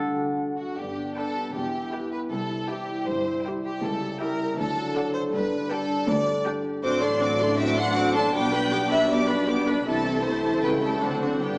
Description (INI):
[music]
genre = classical, dramatic, fast romantic movement for symphony orchestra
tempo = 158 BPM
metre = 4/4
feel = straight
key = G major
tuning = A4 = 435 Hz
[part]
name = mellow large flute ensemble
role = second line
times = 0.0-0.6 s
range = F#5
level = -33 LUFS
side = equal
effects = none
[part]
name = warm clarinet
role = second line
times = 0.0-0.6 s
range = D4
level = -31 LUFS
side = equal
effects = none
[part]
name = concert harp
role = arpeggios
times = 0.0-11.6 s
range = E2 to E5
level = -30 LUFS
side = equal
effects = none
[part]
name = warm symphonic violin section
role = second line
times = 0.6-11.6 s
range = F#4 to A5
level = -27 LUFS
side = equal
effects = none
[part]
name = dark French horn section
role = sustained chords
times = 0.8-11.6 s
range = E3 to E4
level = -30 LUFS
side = equal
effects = none
[part]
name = clear symphonic double bass section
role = bass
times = 0.8-11.6 s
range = E1 to D2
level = -36 LUFS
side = equal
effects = none
[part]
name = warm symphonic cello section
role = bass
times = 0.8-11.6 s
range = C2 to D3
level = -32 LUFS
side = equal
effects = none
[part]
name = rich symphonic violin section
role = melody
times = 1.2-11.6 s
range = F#5 to D6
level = -33 LUFS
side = equal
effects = none
[part]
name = clear symphonic viola section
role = accompaniment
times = 1.2-11.6 s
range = A3 to B4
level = -29 LUFS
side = equal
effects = none
[sound]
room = wet scoring stage reverb, RT60 1.7 s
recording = small speaker sound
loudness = -22 LUFS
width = side -30 dB against mid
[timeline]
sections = 0.8-11.6 A section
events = none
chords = 0.0 D; 0.8 G; 1.5 Em; 2.3 C; 3.8 C#dim7; 4.6 D; 5.3 G; 6.8 D7/A; 8.3 G/B; 9.9 Am/C; 10.6 A7/C#; 11.0 D7